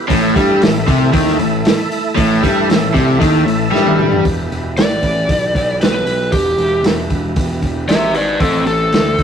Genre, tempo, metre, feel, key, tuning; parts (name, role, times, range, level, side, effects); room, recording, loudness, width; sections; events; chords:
blues rock power trio and southern rock; 116 BPM; 4/4; straight; E minor; A4 = 440 Hz
overdriven tonewheel organ; sustained chords; 0.0-9.2 s; A3 to E5; -22 LUFS; right 2 dB; slow rotary speaker, chorus vibrato
overdriven electric guitar; riff; 0.1-4.2 s; A2 to G3; -14 LUFS; left 2 dB
fuzz picked electric bass; bass; 0.1-9.2 s; E1 to G2; -20 LUFS; right 1 dB; overdrive
vintage drum kit; drums; 0.1-9.2 s; hi-hat, kick drum, snare drum, toms; -17 LUFS; right 1 dB
overdriven slide guitar; melody; 4.8-9.2 s; C4 to E5; -16 LUFS; equal
moderate stone room reverb, RT60 1.1 s; rough rehearsal-room recording, tube saturation; -12 LUFS; side -8 dB against mid
0.0-4.2 A section; 4.2-9.2 B section
drum fill 3.7-4.2; electric slide guitar solo 4.2-9.2
0.1 A5; 4.2 Em; 8.4 Am